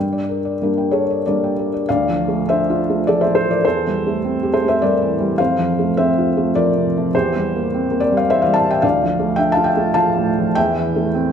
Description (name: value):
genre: neoclassical minimalist piano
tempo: 104 BPM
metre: 3/4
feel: uneven beats, rubato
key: D minor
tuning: A4 = 440 Hz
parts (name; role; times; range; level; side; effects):
- felt-muted upright piano; solo; 0.0-11.3 s; D2 to A5; -15 LUFS; equal; none
room: wet recital hall reverb, RT60 1.5 s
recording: none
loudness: -15 LUFS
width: side -8 dB against mid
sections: 0.0-1.9 A section; 1.9-11.3 B section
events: none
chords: 0.0 Gm; 1.9 Dm; 3.6 Am7/E; 5.4 Fmaj7; 7.1 C7/E; 8.8 Dm; 10.6 Am7/E